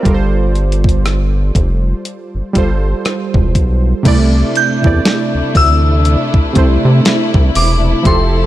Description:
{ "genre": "contemporary R&B", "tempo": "60 BPM", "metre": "4/4", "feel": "swing 58% on 16ths", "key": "C major", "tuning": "A4 = 441 Hz", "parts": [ { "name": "warm analog keys", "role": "accompaniment", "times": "0.0-8.5 s", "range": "C3 to D5", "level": "-17 LUFS", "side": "right 3 dB", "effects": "chorus" }, { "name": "rubbery square bass", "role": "bass", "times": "0.1-8.4 s", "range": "E1 to C3", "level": "-13 LUFS", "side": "equal", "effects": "none" }, { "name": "clean 12-bit digital drum machine", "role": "drums", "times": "0.1-8.3 s", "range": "crash cymbal, hi-hat, kick drum, rim click, snare drum", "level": "-14 LUFS", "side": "equal", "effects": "none" }, { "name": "warm studio string section", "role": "sustained chords", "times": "4.1-8.5 s", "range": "C3 to A4", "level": "-19 LUFS", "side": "left 2 dB", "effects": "none" }, { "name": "soft synth bell", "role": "melody", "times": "4.6-8.5 s", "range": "C6 to G6", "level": "-18 LUFS", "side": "left 1 dB", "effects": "chorus, phaser" } ], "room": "little or no reverb", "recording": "none", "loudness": "-10 LUFS", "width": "side -14 dB against mid", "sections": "0.0-4.1 A section; 4.1-8.5 B section", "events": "none", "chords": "0.1 G9sus4; 4.1 C69" }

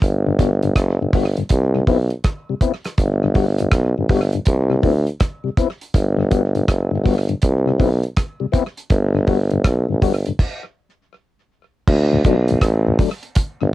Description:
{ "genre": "roots reggae", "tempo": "81 BPM", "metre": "4/4", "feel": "swing 65% on 16ths", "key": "G major", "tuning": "A4 = 440 Hz", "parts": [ { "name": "clear tuba", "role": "bass", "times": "0.0-13.7 s", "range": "F#1 to D2", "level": "-17 LUFS", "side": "right 1 dB", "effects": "transformer saturation" }, { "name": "damped 70s drum kit", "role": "drums", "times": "0.0-13.6 s", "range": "crash cymbal, hi-hat, kick drum, rim click", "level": "-18 LUFS", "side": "right 1 dB", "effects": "cassette tape" }, { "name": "mellow tonewheel organ", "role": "accompaniment", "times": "0.3-13.7 s", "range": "D2 to F#4", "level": "-21 LUFS", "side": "left 6 dB", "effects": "overdrive, chorus vibrato, slow rotary speaker, cassette tape" } ], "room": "little or no reverb", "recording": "home recording on cassette", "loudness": "-16 LUFS", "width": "side -16 dB against mid", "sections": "0.0-11.9 A section; 11.9-13.7 B section", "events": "stop 10.4-11.9", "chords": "0.0 Gmaj7; 1.5 Cmaj7; 3.0 Gmaj7; 4.5 Cmaj7; 5.9 Gmaj7; 7.4 Cmaj7; 8.9 Gmaj7; 10.4 N.C.; 11.9 D" }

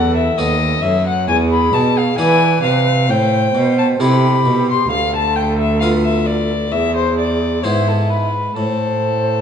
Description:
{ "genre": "classical, baroque-style sonata movement with continuo", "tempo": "66 BPM", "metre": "4/4", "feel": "straight", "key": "A minor", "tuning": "A4 = 440 Hz", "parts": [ { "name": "dark violin", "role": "melody", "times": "0.0-9.4 s", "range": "A4 to C6", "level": "-18 LUFS", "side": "left 6 dB", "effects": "none" }, { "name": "mellow hollow silver concert flute", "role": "second line", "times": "0.0-9.4 s", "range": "G4 to E5", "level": "-21 LUFS", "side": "right 6 dB", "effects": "none" }, { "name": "harpsichord", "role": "accompaniment", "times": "0.0-9.4 s", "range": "D2 to B4", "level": "-21 LUFS", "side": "left 1 dB", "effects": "none" }, { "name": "rich cello", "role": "bass", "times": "0.0-9.4 s", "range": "D2 to E3", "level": "-18 LUFS", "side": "right 1 dB", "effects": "none" } ], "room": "wet recital hall reverb, RT60 1.8 s", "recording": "nothing above 10.6 kHz", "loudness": "-13 LUFS", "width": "side -8 dB against mid", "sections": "0.0-9.4 A section", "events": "none", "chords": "0.0 B7; 1.3 E7; 3.1 Am; 4.9 Bdim/D; 6.7 E; 8.6 Am" }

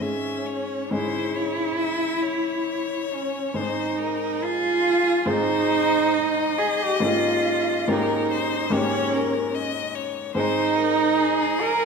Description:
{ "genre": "classical, slow romantic movement for piano trio", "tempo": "66-74 BPM", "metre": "4/4", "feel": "rubato", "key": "Ab major", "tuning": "A4 = 440 Hz", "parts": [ { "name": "clear violin", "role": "melody", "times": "0.0-11.8 s", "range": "Ab4 to Fb5", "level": "-28 LUFS", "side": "left 9 dB", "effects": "none" }, { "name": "warm cello", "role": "second line", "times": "0.0-11.8 s", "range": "Db4 to Bb4", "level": "-23 LUFS", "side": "right 3 dB", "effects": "none" }, { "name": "warm grand piano", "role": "accompaniment", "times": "0.0-11.8 s", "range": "Ab2 to Ab4", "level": "-28 LUFS", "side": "left 2 dB", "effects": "none" } ], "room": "wet recital hall reverb, RT60 1.6 s", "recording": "minimal, uncompressed stereo recording", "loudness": "-21 LUFS", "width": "side -5 dB against mid", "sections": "0.0-11.8 A section", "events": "none", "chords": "0.0 Dbm/Ab; 3.6 Ab; 7.0 Eb7/Ab; 10.4 Ab" }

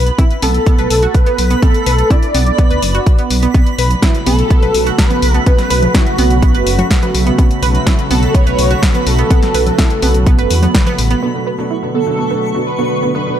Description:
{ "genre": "progressive house", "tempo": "125 BPM", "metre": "4/4", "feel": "straight", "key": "B minor", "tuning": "A4 = 441 Hz", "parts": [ { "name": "analog pluck", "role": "arpeggios", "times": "0.0-13.2 s", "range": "B3 to B4", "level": "-20 LUFS", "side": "right 4 dB", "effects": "chorus, sidechain pumping, ping-pong delay" }, { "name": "dark detuned saw bass", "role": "bass", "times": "0.0-11.2 s", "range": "F#1 to E2", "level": "-14 LUFS", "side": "equal", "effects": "sidechain pumping" }, { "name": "twinkling granular texture", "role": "texture", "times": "0.0-13.4 s", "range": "B5 to C#6", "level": "-26 LUFS", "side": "right 4 dB", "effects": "built-in reverb, sidechain pumping" }, { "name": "deep house drum kit", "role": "drums", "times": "0.1-11.2 s", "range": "hi-hat, snare drum", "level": "-20 LUFS", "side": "left 1 dB", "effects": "overdrive, sidechain pumping on hats, low-pass filter on hats, low-pass filter on snare, low-pass filter on room" }, { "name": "electronic kick drum", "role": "drums", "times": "0.2-10.8 s", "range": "none", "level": "-11 LUFS", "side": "equal", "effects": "none" }, { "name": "congas", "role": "percussion", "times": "0.2-11.0 s", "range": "none", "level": "-22 LUFS", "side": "right 2 dB", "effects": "sidechain pumping on perc" }, { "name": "wide unison lead", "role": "melody", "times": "0.4-13.4 s", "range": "F#4 to D5", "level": "-18 LUFS", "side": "equal", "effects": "ensemble chorus, sidechain pumping, tape echo" }, { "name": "lush unison pad", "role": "sustained chords", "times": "4.0-13.4 s", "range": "C#3 to F#4", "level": "-21 LUFS", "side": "left 1 dB", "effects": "chorus, sidechain pumping" }, { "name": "dark grand piano", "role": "stabs", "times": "11.2-13.4 s", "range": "B2 to A4", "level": "-21 LUFS", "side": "right 2 dB", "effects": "sidechain pumping, ping-pong delay" } ], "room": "light reverb", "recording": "dark, warm production", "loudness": "-10 LUFS", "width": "side -10 dB against mid", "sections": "0.0-11.2 A section; 11.2-13.4 B section", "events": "none", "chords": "0.0 Bm7; 3.5 F#m; 11.2 Bm7" }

